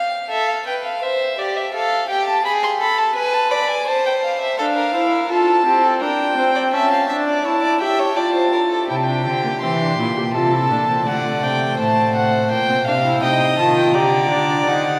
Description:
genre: classical, baroque-style fugue for string quartet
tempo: 84 BPM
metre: 3/4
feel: straight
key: D minor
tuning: A4 = 440 Hz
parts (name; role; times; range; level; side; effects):
- warm violin; melody; 0.0-15.0 s; D5 to C6; -22 LUFS; equal; none
- rich violin; second line; 0.3-15.0 s; G4 to F5; -24 LUFS; equal; none
- warm viola; accompaniment; 4.6-15.0 s; A3 to G4; -23 LUFS; equal; none
- rich cello; bass; 8.9-15.0 s; A2 to E3; -25 LUFS; equal; none
room: wet cathedral reverb, RT60 5.5 s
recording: recorded in a church or concert hall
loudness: -18 LUFS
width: mono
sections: 0.0-8.9 A section; 8.9-15.0 B section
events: none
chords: 0.3 Am; 1.7 Fadd9; 2.5 G#dim; 3.9 Am/C; 4.6 Dm; 6.0 Gm/D; 6.7 A7/C#; 8.2 Dm/F; 8.9 C7; 10.3 F/C; 11.1 D7; 12.5 Gm/Bb; 13.2 Cm; 13.9 Gm/D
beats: | 0.31 1.03 1.75 | 2.46 3.16 3.88 | 4.59 5.30 6.02 | 6.74 7.45 8.17 | 8.89 9.63 10.35 | 11.07 11.79 12.52 | 13.23 13.95 14.67

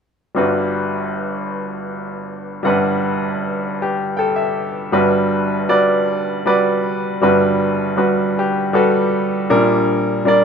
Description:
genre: folk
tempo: 79 BPM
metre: 3/4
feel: straight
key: G major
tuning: A4 = 439 Hz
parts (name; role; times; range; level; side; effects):
- bright upright piano; melody; 0.3-10.4 s; G1 to G5; -15 LUFS; equal; none
room: light reverb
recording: minimal, uncompressed stereo recording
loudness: -15 LUFS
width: side -6 dB against mid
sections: 0.4-4.9 A section; 4.9-10.4 B section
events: upright piano fill 3.8-4.9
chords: 0.4 Gmaj7; 9.5 Bb6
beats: | 0.37 1.13 1.89 | 2.65 3.41 4.17 | 4.94 5.70 6.46 | 7.22 7.98 8.74 | 9.51 10.27

